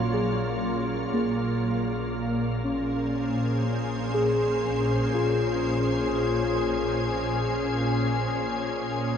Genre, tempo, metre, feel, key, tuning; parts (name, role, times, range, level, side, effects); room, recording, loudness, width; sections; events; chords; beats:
ambient; 60 BPM; 4/4; straight; Bb minor; A4 = 440 Hz
soft additive organ-like pad; sustained chords; 0.0-9.2 s; Bb2 to Db5; -26 LUFS; equal; ensemble chorus, built-in reverb
muted felt-like synth keys; arpeggios; 0.0-9.2 s; Bb3 to Ab4; -28 LUFS; left 1 dB; chorus, ping-pong delay
rich chamber double bass section; bass; 0.0-9.2 s; Bb1; -34 LUFS; equal
wet huge ambient reverb, RT60 9.2 s; in a vast, echoing space; -24 LUFS; side -8 dB against mid
0.0-9.2 A section
0.0 Gbmaj9#11/Bb; 1.1 Bbm7
0.15 | 1.15 2.15 3.15 4.15 | 5.15 6.15 7.15 8.15 | 9.15